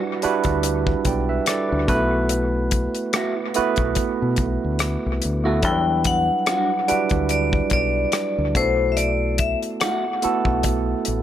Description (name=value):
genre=R&B, neo-soul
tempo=72 BPM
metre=4/4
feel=swing 54% on 16ths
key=E minor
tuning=A4 = 440 Hz
part: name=barky tine electric piano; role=accompaniment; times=0.0-11.2 s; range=F#3 to G5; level=-23 LUFS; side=moving between equal and right 7 dB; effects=overdrive, auto-pan
part: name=deep dub fingered electric bass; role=bass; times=0.2-11.2 s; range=A1 to B2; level=-24 LUFS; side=left 1 dB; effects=none
part: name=damped 70s drum kit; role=drums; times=0.2-11.2 s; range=hi-hat, kick drum, rim click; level=-25 LUFS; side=left 1 dB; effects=dub echo
part: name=electric guitar through a small old amp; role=second line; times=3.1-10.0 s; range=G3 to F#4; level=-31 LUFS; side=right 3 dB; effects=dub echo
part: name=vibraphone with hard mallets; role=melody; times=5.6-10.6 s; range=C5 to G5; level=-22 LUFS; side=left 3 dB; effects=dub echo
room=moderate spring reverb, RT60 2.9 s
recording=echo-heavy mix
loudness=-19 LUFS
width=side -11 dB against mid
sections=0.0-11.2 A section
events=none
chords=0.0 Em9; 1.9 B7sus4; 5.6 Em9; 8.6 B7sus4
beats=0.64 1.47 | 2.30 3.14 3.97 4.80 | 5.64 6.47 7.30 8.14 | 8.97 9.80 10.64